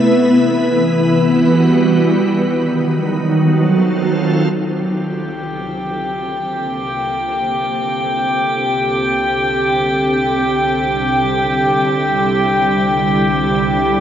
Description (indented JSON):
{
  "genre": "ambient",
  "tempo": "free time",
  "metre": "none",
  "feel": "none",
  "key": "unclear",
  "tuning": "A4 = 440 Hz",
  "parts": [
    { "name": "soft additive organ-like pad", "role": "sustained chords", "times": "0.0-14.0 s", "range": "C2 to B4", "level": "-15 LUFS", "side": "equal", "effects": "ensemble chorus, built-in reverb" },
    { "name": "drifting glass-harmonics texture", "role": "texture", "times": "5.1-14.0 s", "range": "G4 to G5", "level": "-16 LUFS", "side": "equal", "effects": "chorus, built-in reverb" }
  ],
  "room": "wet huge ambient reverb, RT60 7.2 s",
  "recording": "in a vast, echoing space",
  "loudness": "-13 LUFS",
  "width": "side -9 dB against mid",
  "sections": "0.0-4.5 A section; 4.5-14.0 B section",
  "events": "fade-in on ambient pad 4.5-14.0",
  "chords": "0.0 Emadd9; 2.3 F7b9; 4.5 Bbmaj9/C; 9.1 D9sus4/C"
}